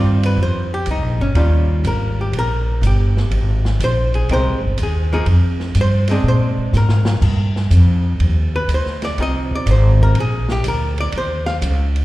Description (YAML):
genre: jazz, small-group swing and bop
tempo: 123 BPM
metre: 4/4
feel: swing 69% on 8ths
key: Eb major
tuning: A4 = 441 Hz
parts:
  - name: archtop guitar, miked and amplified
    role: accompaniment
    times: 0.0-11.6 s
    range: Eb3 to F5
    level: -22 LUFS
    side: left 1 dB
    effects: slapback echo
  - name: upright bass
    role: bass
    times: 0.0-12.0 s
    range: G1 to Bb2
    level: -15 LUFS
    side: equal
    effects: none
  - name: open jazz drum kit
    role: drums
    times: 0.2-12.0 s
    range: crash cymbal, hi-hat, kick drum, ride cymbal, snare drum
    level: -28 LUFS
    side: right 2 dB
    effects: none
room: small room ambience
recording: live gig heard through the venue's PA, recital hall reverb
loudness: -14 LUFS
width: side -17 dB against mid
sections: 0.0-12.0 A section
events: drum fill 6.7-7.2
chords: 0.0 Eb69; 1.4 Eb9; 3.3 Abmaj9; 5.3 Fmadd9; 6.2 Bb9; 7.2 Ebmaj9; 9.2 Fm7; 10.2 Bb; 11.1 Eb5